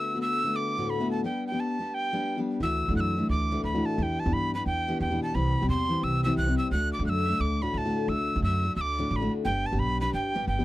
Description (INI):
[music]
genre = celtic folk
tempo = 175 BPM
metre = 4/4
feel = swing 62% on 8ths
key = unclear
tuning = A4 = 436 Hz
[part]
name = breathy bright mid whistle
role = melody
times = 0.0-10.6 s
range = G5 to F#6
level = -30 LUFS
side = right 1 dB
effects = none
[part]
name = picked steel-string acoustic guitar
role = accompaniment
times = 0.0-10.6 s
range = D2 to G4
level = -29 LUFS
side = left 2 dB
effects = none
[part]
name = upright bass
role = bass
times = 2.6-10.6 s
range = G1 to G2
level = -29 LUFS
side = right 1 dB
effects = none
[sound]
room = light reverb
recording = dry, close 1970s-style studio recording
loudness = -25 LUFS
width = side -16 dB against mid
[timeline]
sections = 0.0-2.6 A section; 2.6-10.6 A section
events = none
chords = 0.0 D6; 1.2 G; 2.6 Dadd9; 4.0 Em7; 5.3 C; 6.7 D; 9.4 G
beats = 0.21 0.56 0.90 | 1.24 1.58 1.93 2.27 | 2.61 2.95 3.29 3.63 | 3.98 4.32 4.66 5.00 | 5.34 5.69 6.03 6.37 | 6.71 7.05 7.40 7.74 | 8.08 8.42 8.77 9.11 | 9.45 9.79 10.13 10.47